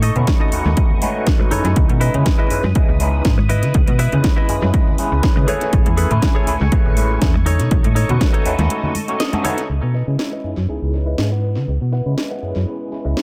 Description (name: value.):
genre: filtered disco house.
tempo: 121 BPM.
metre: 4/4.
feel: swing 53% on 16ths.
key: C# minor.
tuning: A4 = 440 Hz.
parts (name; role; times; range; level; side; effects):
string machine, full ensemble; sustained chords; 0.0-13.2 s; A3 to D#6; -32 LUFS; equal; ensemble chorus, sidechain pumping, low-pass filter.
direct-recorded clean electric guitar; riff; 0.0-13.2 s; D#4 to G#5; -29 LUFS; equal; vintage 12-bit sampler grit, sidechain pumping, low-pass filter, analog delay.
slap-like FM bass; bass; 0.0-13.1 s; A1 to C#3; -20 LUFS; equal; sidechain pumping, low-pass filter.
house drum kit; drums; 0.0-13.2 s; hi-hat, snare drum; -29 LUFS; equal; overdrive, analog delay.
tube shaker and congas; percussion; 0.0-9.7 s; none; -29 LUFS; equal; sidechain pumping on perc, low-pass filter on perc.
overdriven tine electric piano; accompaniment; 0.2-13.2 s; G#3 to G#5; -26 LUFS; equal; fast tremolo, phaser, sidechain pumping, low-pass filter.
electronic kick drum; drums; 0.3-8.3 s; none; -19 LUFS; equal; overdrive.
room: light reverb.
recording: echo-heavy mix.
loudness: -17 LUFS.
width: mono.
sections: 0.0-9.7 A section; 9.7-13.2 B section.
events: break 8.7-9.7; clean electric guitar fill 9.0-9.7; band accent 9.2; filter sweep 9.7-13.2.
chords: 0.0 B9; 1.8 C#m9; 5.5 Amaj7; 7.5 B9; 9.7 C#m9.